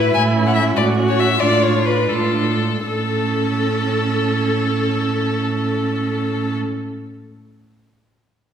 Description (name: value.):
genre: quick classical-period movement for string quartet.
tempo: 75-100 BPM (dotted quarters).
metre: 6/8.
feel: rubato.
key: A major.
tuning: A4 = 441 Hz.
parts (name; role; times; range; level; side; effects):
rich violin; melody; 0.0-6.6 s; A4 to G#5; -22 LUFS; left 5 dB; none.
rich violin; second line; 0.0-6.6 s; C#4 to A4; -25 LUFS; left 1 dB; none.
rich viola; accompaniment; 0.0-6.6 s; C#4 to F#4; -22 LUFS; right 3 dB; none.
warm cello; bass; 0.0-6.6 s; A2; -21 LUFS; right 3 dB; none.
room: wet recital hall reverb, RT60 1.5 s.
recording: recorded in a church or concert hall.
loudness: -16 LUFS.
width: side -8 dB against mid.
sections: 0.0-2.9 A section; 2.9-5.8 B section.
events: slowing down 0.0-2.9.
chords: 0.1 A; 1.4 Dm/A; 2.9 A.